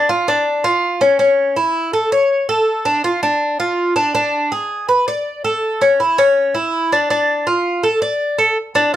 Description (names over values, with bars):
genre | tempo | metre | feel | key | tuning
latin | 163 BPM | 4/4 | straight | D minor | A4 = 440 Hz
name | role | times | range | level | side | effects
Cuban tres | solo | 0.0-9.0 s | C#4 to D5 | -14 LUFS | equal | none
room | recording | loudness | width
moderate studio reverb, RT60 0.6 s | none | -14 LUFS | side -12 dB against mid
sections
0.0-8.6 A section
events
none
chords
none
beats
0.09 0.46 0.83 | 1.20 1.57 1.94 2.31 | 2.67 3.04 3.41 3.78 | 4.15 4.52 4.89 5.26 | 5.62 5.99 6.36 6.73 | 7.10 7.47 7.84 8.21 | 8.57 8.94